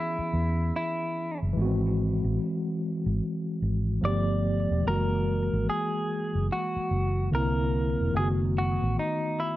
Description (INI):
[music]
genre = hip hop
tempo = 73 BPM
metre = 4/4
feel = swing 64% on 16ths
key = E major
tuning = A4 = 440 Hz
[part]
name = direct-recorded clean electric guitar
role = melody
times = 0.0-9.6 s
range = D#4 to D5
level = -30 LUFS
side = right 1 dB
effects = low-pass filter, plate reverb
[part]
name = mellow tine electric piano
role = accompaniment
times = 0.0-9.6 s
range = D3 to G#4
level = -30 LUFS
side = left 1 dB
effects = medium stereo tremolo, cassette tape, low-pass filter
[part]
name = vintage muted fingered electric bass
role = bass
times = 0.2-8.9 s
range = E1 to E2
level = -27 LUFS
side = equal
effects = none
[sound]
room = light reverb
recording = cassette tape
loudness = -25 LUFS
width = side -15 dB against mid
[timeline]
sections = 0.0-9.6 A section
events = none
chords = 0.0 E6; 1.6 G#aug7; 4.0 G9; 4.8 F#9; 7.3 C9; 8.1 B7/F#